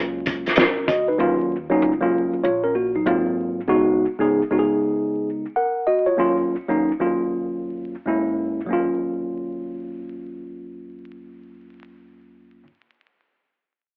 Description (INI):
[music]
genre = hip hop, jazz-hop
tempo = 96 BPM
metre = 4/4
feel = swing 64% on 16ths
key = Eb minor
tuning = A4 = 439 Hz
[part]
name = mellow tine electric piano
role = accompaniment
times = 0.0-12.7 s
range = Eb2 to Gb5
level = -23 LUFS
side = equal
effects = cassette tape
[part]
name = upright bass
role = bass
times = 0.0-3.7 s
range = Ab1 to Eb2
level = -36 LUFS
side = equal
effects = none
[part]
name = cloth-damped thuddy drum kit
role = drums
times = 0.3-1.1 s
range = hi-hat, kick drum, snare drum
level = -22 LUFS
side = equal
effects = vintage 12-bit sampler grit
[sound]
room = moderate spring reverb, RT60 1.2 s, studio ambience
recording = home recording on cassette, vinyl crackle, telephone sound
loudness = -22 LUFS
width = mono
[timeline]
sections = 0.0-8.7 A section; 8.7-11.2 B section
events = none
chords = 0.0 Bmaj7; 1.2 Ebm9; 3.1 Ab13; 3.7 Db7sus4; 6.2 Ebm9; 8.1 Gb9; 8.7 Ebm9